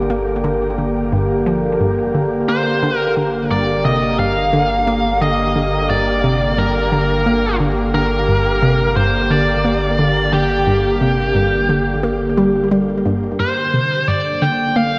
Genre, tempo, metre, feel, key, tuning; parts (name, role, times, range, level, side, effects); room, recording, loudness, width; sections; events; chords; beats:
ambient, sequencer-driven space music; 88 BPM; 4/4; straight; G minor; A4 = 440 Hz
sweeping resonant pad; sustained chords; 0.0-15.0 s; D3 to Bb4; -23 LUFS; equal; chorus, shimmer reverb
warm sub bass; bass; 0.0-15.0 s; G1; -28 LUFS; equal
wind-like tuned noise texture; texture; 0.0-15.0 s; G3 to G6; -30 LUFS; equal; built-in reverb, shimmer reverb
hollow square pluck; riff; 0.1-15.0 s; G2 to Bb3; -22 LUFS; equal; chorus, phaser, delay
biting lead guitar; melody; 2.5-15.0 s; G4 to G5; -21 LUFS; equal; overdrive, shimmer reverb, delay
wet concert hall reverb, RT60 2.2 s; -17 LUFS; mono
0.0-13.4 A section; 13.4-15.0 B section
filter sweep on synth arpeggio sound 13.4-15.0
0.0 Gm
0.44 1.12 1.81 | 2.49 3.17 3.85 4.53 | 5.21 5.90 6.58 7.26 | 7.94 8.62 9.31 9.99 | 10.67 11.35 12.03 12.71 | 13.40 14.08 14.76